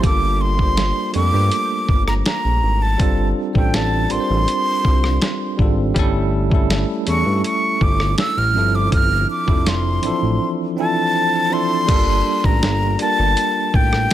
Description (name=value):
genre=contemporary R&B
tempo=81 BPM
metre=4/4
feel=straight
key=G dorian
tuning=A4 = 440 Hz
part: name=breathy concert flute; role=melody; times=0.0-14.1 s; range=G5 to F6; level=-20 LUFS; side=equal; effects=ping-pong delay
part: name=bell-like tine electric piano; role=accompaniment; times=0.0-14.1 s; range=E3 to C5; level=-22 LUFS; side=right 1 dB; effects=fast stereo tremolo
part: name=smooth synth bass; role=bass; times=0.0-14.1 s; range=F1 to G2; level=-20 LUFS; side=equal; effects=none
part: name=dusty soul sampler-style drum kit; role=drums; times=0.0-14.1 s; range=crash cymbal, hi-hat, kick drum, rim click, snare drum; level=-19 LUFS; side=equal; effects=none
room=little or no reverb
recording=none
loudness=-15 LUFS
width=side -12 dB against mid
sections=0.0-11.9 A section; 11.9-14.1 B section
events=none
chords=0.0 Gm7; 6.0 A7/G; 8.6 Dm9; 11.9 Gm7